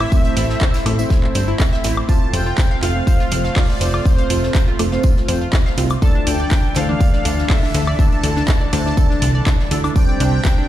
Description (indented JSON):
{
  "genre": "progressive house",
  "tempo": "122 BPM",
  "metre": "4/4",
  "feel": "straight",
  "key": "F major",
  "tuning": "A4 = 440 Hz",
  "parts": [
    { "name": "soft supersaw", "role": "melody", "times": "0.0-10.7 s", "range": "C5 to A5", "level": "-26 LUFS", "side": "equal", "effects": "sidechain pumping, digital delay" },
    { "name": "lush unison pad", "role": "sustained chords", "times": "0.0-10.7 s", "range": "C3 to A4", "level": "-27 LUFS", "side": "equal", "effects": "chorus, sidechain pumping" },
    { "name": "analog pluck", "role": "arpeggios", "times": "0.0-10.6 s", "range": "D4 to F5", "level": "-27 LUFS", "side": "equal", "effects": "chorus, sidechain pumping, dub echo" },
    { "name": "deep mellow chord stab", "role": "stabs", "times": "0.0-10.7 s", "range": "E3 to D5", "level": "-25 LUFS", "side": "equal", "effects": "chorus, phaser, cassette tape, sidechain pumping, dub echo" },
    { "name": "plucky analog bass", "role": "bass", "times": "0.0-10.4 s", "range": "F1 to F2", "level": "-19 LUFS", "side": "equal", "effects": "sidechain pumping" },
    { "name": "pop drum kit", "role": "drums", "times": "0.0-10.6 s", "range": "handclaps, hi-hat, woodblock", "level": "-25 LUFS", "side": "equal", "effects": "sidechain pumping on hats, sidechain pumping on perc" },
    { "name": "electronic kick drum", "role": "drums", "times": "0.1-10.6 s", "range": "none", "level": "-15 LUFS", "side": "equal", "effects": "none" },
    { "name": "natural country drum kit", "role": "drums", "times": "0.1-10.6 s", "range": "hi-hat, snare drum, tambourine", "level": "-35 LUFS", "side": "right 1 dB", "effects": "sidechain pumping on hats, high-pass filter on hats, high-pass filter on snare, sidechain pumping on perc, high-pass filter on perc, high-pass filter on room" }
  ],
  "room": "small room ambience",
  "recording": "played on a big sound system in a bare room, large studio reverb",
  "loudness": "-14 LUFS",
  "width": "side -13 dB against mid",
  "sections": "0.0-10.7 A section",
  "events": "none",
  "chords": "0.0 Am; 2.1 F; 6.0 Dsus2; 10.0 Csus2"
}